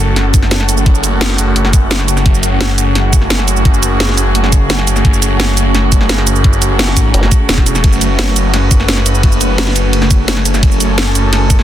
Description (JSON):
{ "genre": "dark technical drum and bass", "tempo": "172 BPM", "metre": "4/4", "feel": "straight", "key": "F# minor", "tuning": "A4 = 445 Hz", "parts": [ { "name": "dark chamber string section", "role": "sustained chords", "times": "0.0-11.6 s", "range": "C#3 to B4", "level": "-20 LUFS", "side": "equal", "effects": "vintage 12-bit sampler grit, sidechain pumping" }, { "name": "phased detuned saw bass", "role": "bass", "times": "0.0-11.6 s", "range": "E1 to G#1", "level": "-14 LUFS", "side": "equal", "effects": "phaser, overdrive" }, { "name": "ethereal airy pad", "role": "texture", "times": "0.0-11.6 s", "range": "A3 to G#5", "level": "-20 LUFS", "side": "right 1 dB", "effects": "ensemble chorus, built-in reverb, sidechain pumping" }, { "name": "drum and bass drum kit", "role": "drums", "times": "0.2-11.6 s", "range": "hi-hat, ride cymbal, shaker, snare drum", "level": "-16 LUFS", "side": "right 1 dB", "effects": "none" }, { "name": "electronic kick drum", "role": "drums", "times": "0.3-11.6 s", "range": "none", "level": "-10 LUFS", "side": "equal", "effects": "none" }, { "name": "formant-sweep wobble bass", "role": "bass", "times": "7.1-7.3 s", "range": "F#1", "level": "-11 LUFS", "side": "equal", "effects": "chorus" } ], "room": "digital ambience", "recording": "dense, heavily limited modern master", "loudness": "-9 LUFS", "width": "side -12 dB against mid", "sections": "0.0-11.6 A section", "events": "none", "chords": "0.0 F#m", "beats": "0.16 0.51 | 0.86 1.21 1.56 1.91 | 2.26 2.61 2.96 3.30 | 3.65 4.00 4.35 4.70 | 5.05 5.40 5.75 6.09 | 6.44 6.79 7.14 7.49 | 7.84 8.19 8.54 8.88 | 9.23 9.58 9.93 10.28 | 10.63 10.98 11.33" }